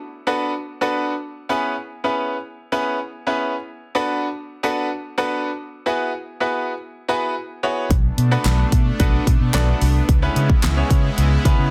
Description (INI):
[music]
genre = dance-pop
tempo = 110 BPM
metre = 4/4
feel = straight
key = B dorian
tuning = A4 = 440 Hz
[part]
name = bright grand piano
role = accompaniment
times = 0.3-11.7 s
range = B3 to D5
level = -24 LUFS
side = equal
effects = sidechain pumping
[part]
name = supersaw pad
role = sustained chords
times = 7.9-11.7 s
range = C#3 to E4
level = -29 LUFS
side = equal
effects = sidechain pumping
[part]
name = vintage muted fingered electric bass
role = bass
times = 7.9-11.7 s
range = B1 to C#3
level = -21 LUFS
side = equal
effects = sidechain pumping
[part]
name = pop drum kit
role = drums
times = 7.9-11.6 s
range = handclaps, hi-hat, kick drum, snare drum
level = -21 LUFS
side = equal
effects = none
[part]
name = group handclap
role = percussion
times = 8.5-10.8 s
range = none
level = -34 LUFS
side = equal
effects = none
[sound]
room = light reverb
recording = dense, heavily limited modern master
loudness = -21 LUFS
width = mono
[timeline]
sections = 0.0-11.7 A section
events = none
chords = 0.0 Bm7; 1.4 C#m7; 3.5 D6; 5.7 Eadd9; 7.9 Bm7; 10.1 C#m7